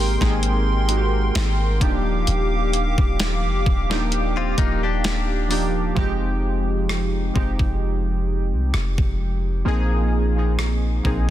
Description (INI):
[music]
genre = contemporary R&B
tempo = 65 BPM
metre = 4/4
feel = swing 54% on 16ths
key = F dorian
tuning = A4 = 440 Hz
[part]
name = warm analog keys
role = accompaniment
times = 0.0-11.3 s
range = F3 to Ab4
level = -25 LUFS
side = right 2 dB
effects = chorus
[part]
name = hollow soft pad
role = sustained chords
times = 0.0-5.9 s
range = G4 to D6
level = -27 LUFS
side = equal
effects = chorus
[part]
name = warm 808-style bass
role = bass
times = 0.0-11.3 s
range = Eb1 to C2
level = -22 LUFS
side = equal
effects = none
[part]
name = crisp 8-bit digital drum machine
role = drums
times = 0.2-11.3 s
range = hi-hat, kick drum, rim click, snare drum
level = -24 LUFS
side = equal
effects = none
[part]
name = direct-recorded clean electric guitar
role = arpeggios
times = 4.4-5.9 s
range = Bb3 to G4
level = -28 LUFS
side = left 8 dB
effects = lush chorus, ping-pong delay
[sound]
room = digital ambience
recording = dense, heavily limited modern master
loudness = -19 LUFS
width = side -12 dB against mid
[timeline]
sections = 0.0-6.0 A section; 6.0-11.3 B section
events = none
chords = 0.0 Abmaj9; 1.8 Ebmaj9; 6.0 Fm7; 9.7 Bb7sus4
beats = 0.43 1.35 | 2.27 3.20 4.12 5.04 | 5.97 6.89 7.81 8.73 | 9.66 10.58